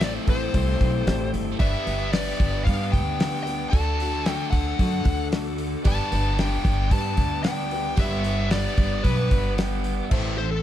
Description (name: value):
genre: folk rock and heartland rock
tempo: 113 BPM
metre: 4/4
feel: straight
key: unclear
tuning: A4 = 440 Hz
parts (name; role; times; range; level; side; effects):
- smooth overdriven lead guitar; melody; 0.0-10.6 s; A4 to A5; -30 LUFS; left 2 dB; digital delay
- bright upright piano; accompaniment; 0.0-10.6 s; E4 to E5; -42 LUFS; right 3 dB; none
- picked swing-style acoustic guitar; accompaniment; 0.0-10.6 s; A2 to B4; -35 LUFS; left 6 dB; none
- bright tonewheel organ; sustained chords; 0.0-10.6 s; A4 to D6; -39 LUFS; equal; chorus vibrato, fast rotary speaker
- biting overdriven guitar; riff; 0.0-10.6 s; A2 to C5; -30 LUFS; equal; spring reverb
- upright bass; bass; 0.0-10.6 s; G1 to G2; -26 LUFS; equal; none
- damped 70s drum kit; drums; 0.0-10.2 s; crash cymbal, hi-hat, kick drum, snare drum; -24 LUFS; equal; none
room: little or no reverb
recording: dark, warm production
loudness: -21 LUFS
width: side -12 dB against mid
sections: 0.0-10.1 A section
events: none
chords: 0.0 Am7; 1.6 G; 3.7 D; 5.9 G; 10.1 Am